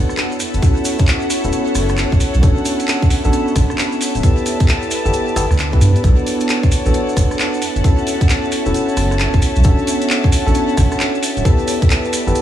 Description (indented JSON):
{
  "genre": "UK garage, two-step garage",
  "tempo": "133 BPM",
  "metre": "4/4",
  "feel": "swing 64% on 16ths",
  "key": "unclear",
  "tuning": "A4 = 440 Hz",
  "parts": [
    { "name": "dark chamber violin section", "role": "sustained chords", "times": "0.0-12.4 s", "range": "D4 to A5", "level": "-25 LUFS", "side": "left 1 dB", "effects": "sidechain pumping" },
    { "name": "tine electric piano", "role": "stabs", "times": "0.0-12.4 s", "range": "B3 to B4", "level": "-20 LUFS", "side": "left 1 dB", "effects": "low-pass filter, analog delay" },
    { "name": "saturated sub bass", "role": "bass", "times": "0.0-12.3 s", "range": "D1 to G2", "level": "-15 LUFS", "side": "equal", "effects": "none" },
    { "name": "ethereal airy pad", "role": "texture", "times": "0.0-12.4 s", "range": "B3 to C#5", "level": "-25 LUFS", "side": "right 1 dB", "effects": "ensemble chorus, built-in reverb, phaser, sidechain pumping" },
    { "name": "garage drum kit", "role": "drums", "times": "0.1-12.4 s", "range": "handclaps, hi-hat, rim click", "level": "-23 LUFS", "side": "equal", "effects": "none" },
    { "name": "maracas", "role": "percussion", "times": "0.1-12.4 s", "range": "none", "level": "-29 LUFS", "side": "right 2 dB", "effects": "analog delay" },
    { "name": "electronic kick drum", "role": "drums", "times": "0.6-11.9 s", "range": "none", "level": "-13 LUFS", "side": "equal", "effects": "none" }
  ],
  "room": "light reverb, digital ambience",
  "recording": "echo-heavy mix, studio reverb",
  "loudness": "-13 LUFS",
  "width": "side -11 dB against mid",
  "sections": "0.0-12.4 A section",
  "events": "filter sweep on tine electric piano 0.0-12.4",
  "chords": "0.4 F#m7; 2.4 Dmaj7; 4.2 G69; 6.0 Bm7; 7.6 F#m7; 9.6 Dmaj7; 11.5 G69"
}